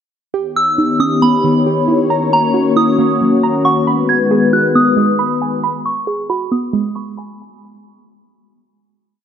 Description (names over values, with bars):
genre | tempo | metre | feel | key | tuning
hip hop, atmospheric cloud-rap | 136 BPM | 4/4 | half-time | G# minor | A4 = 440 Hz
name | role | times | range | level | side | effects
sweeping resonant pad | sustained chords | 0.3-5.6 s | D#3 to C#5 | -14 LUFS | left 4 dB | chorus
warbly dusty pluck | arpeggios | 0.3-7.4 s | D#3 to B5 | -18 LUFS | right 5 dB | chorus, tape echo
soft synth bell | melody | 0.6-7.4 s | A#5 to G#6 | -17 LUFS | right 2 dB | chorus, tape echo
room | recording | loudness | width
moderate lush hall reverb, RT60 2.6 s | low-pass filter | -12 LUFS | side -8 dB against mid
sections
0.3-7.4 breakdown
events
filter sweep 0.3-7.4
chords
0.3 D#7b9b13; 2.1 F#7; 3.9 G#m7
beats
| 0.34 0.78 1.22 1.66 | 2.11 2.55 2.99 3.43 | 3.87 4.31 4.75 5.19 | 5.63 6.08 6.52 6.96